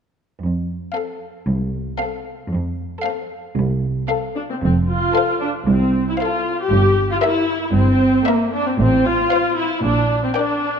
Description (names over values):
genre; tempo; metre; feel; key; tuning
cinematic, playful, whimsical film cue; 115 BPM; 4/4; straight; F major; A4 = 440 Hz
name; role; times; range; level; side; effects
rich chamber cello section; bass; 0.4-10.2 s; C2 to Bb2; -21 LUFS; right 1 dB; none
rich chamber violin section; melody; 0.9-10.7 s; E5 to G5; -27 LUFS; left 4 dB; none
rich chamber violin section; second line; 0.9-10.7 s; A4 to E5; -26 LUFS; left 5 dB; none
rich chamber viola section; accompaniment; 0.9-10.8 s; Bb3 to G4; -18 LUFS; equal; none
rich studio double bass section; bass; 4.6-10.2 s; F1 to C2; -23 LUFS; right 2 dB; none
room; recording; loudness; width
moderate scoring stage reverb, RT60 1.9 s; dark, warm production; -17 LUFS; side -7 dB against mid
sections
0.4-4.6 A section; 4.6-10.8 B section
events
none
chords
0.4 F; 6.7 Edim/G; 8.8 F/A; 9.8 Gm/Bb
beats
| 0.42 0.95 1.47 1.99 | 2.51 3.03 3.56 4.09 | 4.63 5.15 5.67 6.19 | 6.71 7.23 7.74 8.26 | 8.79 9.31 9.83 10.35